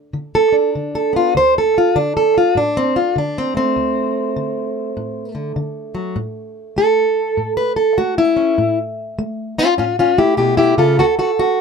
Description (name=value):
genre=acoustic country blues, solo or duo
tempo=100 BPM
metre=4/4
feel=swing 63% on 8ths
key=unclear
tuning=A4 = 440 Hz
part: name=fingerpicked plugged-in steel-string acoustic guitar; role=solo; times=0.0-11.6 s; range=D2 to C5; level=-15 LUFS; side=equal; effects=none
room=moderate booth ambience, RT60 0.2 s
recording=none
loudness=-14 LUFS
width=side -5 dB against mid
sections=0.0-11.6 A section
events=steel-string acoustic guitar solo 0.0-11.6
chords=0.0 G (rootless); 1.4 D7(no3); 6.2 A; 11.0 D